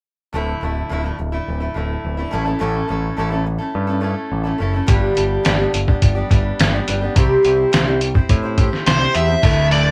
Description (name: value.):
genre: quiet-loud alternative rock.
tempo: 106 BPM.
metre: 4/4.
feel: straight.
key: unclear.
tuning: A4 = 440 Hz.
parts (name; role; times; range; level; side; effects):
picked steel-string acoustic guitar; arpeggios; 0.3-9.9 s; D2 to C5; -23 LUFS; equal; none.
growling picked electric bass; bass; 0.3-9.9 s; D1 to A2; -24 LUFS; equal; overdrive.
lo-fi sampler-style drum kit; drums; 4.9-9.8 s; hi-hat, kick drum, snare drum; -19 LUFS; equal; none.
nasal lead guitar with a parked wah; melody; 8.9-9.9 s; C5 to E5; -19 LUFS; equal; overdrive, slapback echo.
overdriven semi-hollow guitar; riff; 9.4-9.9 s; D2 to D3; -19 LUFS; equal; none.
room: light reverb.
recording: band playing live in one room.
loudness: -18 LUFS.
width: mono.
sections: 0.3-9.4 A section.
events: none.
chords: 0.3 Dsus2; 2.3 A; 4.9 G; 7.2 C.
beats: | 0.33 0.90 1.47 2.04 | 2.61 3.18 3.75 4.32 | 4.89 5.46 6.02 6.59 | 7.16 7.73 8.29 8.86 | 9.43.